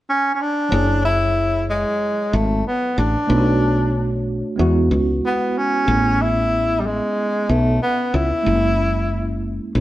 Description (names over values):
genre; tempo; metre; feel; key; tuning
hip hop; 93 BPM; 4/4; swing 60% on 16ths; F# minor; A4 = 440 Hz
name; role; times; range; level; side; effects
breathy tenor saxophone; melody; 0.1-9.4 s; G3 to E4; -20 LUFS; equal; none
mellow tine electric piano; accompaniment; 0.7-9.8 s; F#3 to C#5; -24 LUFS; right 1 dB; medium stereo tremolo
woody fretless electric bass; bass; 0.7-9.8 s; F#1 to E2; -19 LUFS; equal; none
room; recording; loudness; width
moderate stone room reverb, RT60 1.3 s; band playing live in one room; -17 LUFS; side -15 dB against mid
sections
0.7-9.8 A section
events
none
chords
0.0 N.C.; 0.7 F#7(no3); 3.3 Bm7; 4.6 E; 5.9 Amaj7; 8.5 F#7